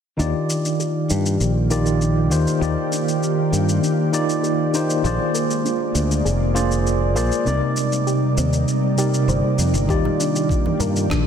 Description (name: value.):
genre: sunset chillout.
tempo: 99 BPM.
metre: 4/4.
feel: straight.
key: Eb major.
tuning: A4 = 440 Hz.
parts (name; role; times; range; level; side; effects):
tine electric piano; accompaniment; 0.2-11.3 s; C3 to D5; -21 LUFS; moving between left 4 dB and right 4 dB; medium stereo tremolo, auto-pan, ping-pong delay.
ethereal airy pad; sustained chords; 0.9-11.3 s; C3 to D5; -24 LUFS; right 1 dB; ensemble chorus, built-in reverb.
soft round pluck; arpeggios; 0.2-11.3 s; C4 to C5; -31 LUFS; left 4 dB; chorus, ping-pong delay.
fingered electric bass; bass; 0.2-11.3 s; F1 to G2; -21 LUFS; equal; none.
electronic shaker and rim click; drums; 0.2-11.2 s; none; -30 LUFS; left 2 dB; soft clipping on snare.
electronic kick drum; drums; 9.9-11.2 s; none; -22 LUFS; equal; none.
congas; percussion; 10.1-10.9 s; none; -30 LUFS; right 4 dB; none.
room: wet concert hall reverb, RT60 2.0 s, digital ambience.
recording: dense, heavily limited modern master.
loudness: -17 LUFS.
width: side -8 dB against mid.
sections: 0.2-11.3 A section.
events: filter sweep on synth pluck 0.2-11.3.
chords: 0.2 Ebmaj7; 5.0 Bb7; 7.5 Cm7; 9.9 Ebmaj7.